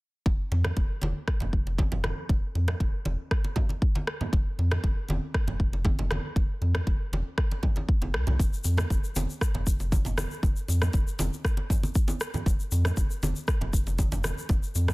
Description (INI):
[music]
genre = afro house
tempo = 118 BPM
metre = 4/4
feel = straight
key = unclear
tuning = A4 = 440 Hz
[part]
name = round analog bass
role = bass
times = 0.3-14.9 s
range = F1 to F2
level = -28 LUFS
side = equal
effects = sidechain pumping
[part]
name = electronic kick drum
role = drums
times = 0.3-14.6 s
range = none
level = -26 LUFS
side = equal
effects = none
[part]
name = congas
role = percussion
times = 0.3-14.9 s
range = none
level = -34 LUFS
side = right 1 dB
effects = none
[part]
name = electronic rim click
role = drums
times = 0.6-14.9 s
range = none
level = -35 LUFS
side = equal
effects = soft clipping on snare
[part]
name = egg shaker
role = percussion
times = 8.4-14.9 s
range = none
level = -39 LUFS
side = left 5 dB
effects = none
[sound]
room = studio reverb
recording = dense, heavily limited modern master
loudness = -25 LUFS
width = side -23 dB against mid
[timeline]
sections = 0.3-14.9 A section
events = filter sweep on analog synth bass 0.3-14.9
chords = none